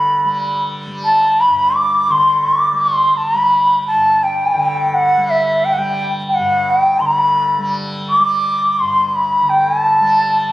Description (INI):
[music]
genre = indian classical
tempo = 85 BPM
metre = 4/4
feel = straight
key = G raga bilaval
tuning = A4 = 440 Hz
[part]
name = bansuri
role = melody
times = 0.0-10.5 s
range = E5 to D6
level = -12 LUFS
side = equal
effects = none
[part]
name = tanpura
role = drone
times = 0.0-10.5 s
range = G2 to G3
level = -24 LUFS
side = equal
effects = none
[sound]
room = moderate recital hall reverb, RT60 1.4 s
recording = recorded on a phone in the room, club reverb, compression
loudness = -12 LUFS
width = side -16 dB against mid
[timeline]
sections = 0.0-10.5 A section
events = speeding up 0.0-10.5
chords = none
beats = 0.34 1.05 1.76 | 2.48 3.18 3.89 4.60 | 5.30 6.00 6.71 7.40 | 8.10 8.79 9.48 10.17